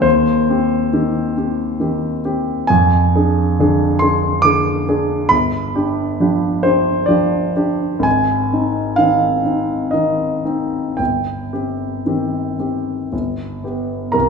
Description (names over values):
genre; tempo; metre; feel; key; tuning
classical, romantic nocturne for solo piano; 55-70 BPM; 3/4; rubato; unclear; A4 = 443 Hz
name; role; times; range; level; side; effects
warm concert grand piano; solo; 0.0-14.3 s; G1 to D6; -15 LUFS; equal; none
room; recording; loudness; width
wet recital hall reverb, RT60 1.8 s; studio reverb; -15 LUFS; side -5 dB against mid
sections
0.0-14.1 A section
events
none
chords
0.0 Cm/Eb; 2.7 Ddim/F; 5.3 G7; 8.1 Ab; 11.0 Cm/G; 13.1 G